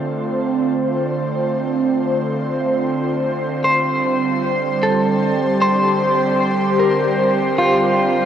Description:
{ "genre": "ambient", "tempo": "76 BPM", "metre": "4/4", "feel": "straight", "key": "unclear", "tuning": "A4 = 442 Hz", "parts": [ { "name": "airy breathy pad", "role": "sustained chords", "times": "0.0-8.3 s", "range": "D3 to C5", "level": "-17 LUFS", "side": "right 1 dB", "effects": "chorus, phaser" }, { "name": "clean electric guitar", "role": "arpeggios", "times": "3.6-8.3 s", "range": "F4 to C5", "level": "-18 LUFS", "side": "left 1 dB", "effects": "harmonic tremolo, diffuse ambient delay" } ], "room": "wet shimmer reverb, RT60 7.5 s", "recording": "worn, warbling old tape, cassette tape, warbly pitch drift", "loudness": "-16 LUFS", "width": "side -9 dB against mid", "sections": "0.0-8.3 A section", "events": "none", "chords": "0.0 Dm7; 3.3 Csus2" }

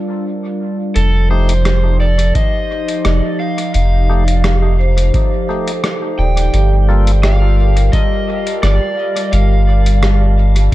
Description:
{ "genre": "ambient dub", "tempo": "86 BPM", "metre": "4/4", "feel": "swing 53% on 16ths", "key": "unclear", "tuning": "A4 = 440 Hz", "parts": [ { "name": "warbly tape-like pad", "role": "sustained chords", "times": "0.0-10.7 s", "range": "F3 to A5", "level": "-21 LUFS", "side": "right 1 dB", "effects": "chorus, built-in reverb" }, { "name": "vibraphone with soft mallets", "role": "arpeggios", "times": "0.0-10.7 s", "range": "F4 to F5", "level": "-27 LUFS", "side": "equal", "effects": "dub echo" }, { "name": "overdriven slide guitar", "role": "melody", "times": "1.0-10.7 s", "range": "A4 to G5", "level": "-22 LUFS", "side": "left 1 dB", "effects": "dub echo" }, { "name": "soft dub sub bass", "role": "bass", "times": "1.0-10.7 s", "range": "Eb1 to G1", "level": "-11 LUFS", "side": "equal", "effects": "none" }, { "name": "lo-fi sampler-style drum kit", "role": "drums", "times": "1.0-10.7 s", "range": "hi-hat, rim click", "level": "-23 LUFS", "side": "equal", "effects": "dub echo" }, { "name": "percussive tonewheel organ", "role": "stabs", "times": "1.3-7.1 s", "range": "A3 to A4", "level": "-28 LUFS", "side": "left 3 dB", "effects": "overdrive, dub echo" }, { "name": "electronic kick drum", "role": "drums", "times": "2.4-10.7 s", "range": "none", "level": "-16 LUFS", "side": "equal", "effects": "none" } ], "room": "little or no reverb", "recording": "dark, warm production", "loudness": "-12 LUFS", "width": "side -16 dB against mid", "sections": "1.0-10.7 A section", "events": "break 0.0-1.0", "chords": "0.0 Gm9; 1.0 F9; 6.5 Gm9" }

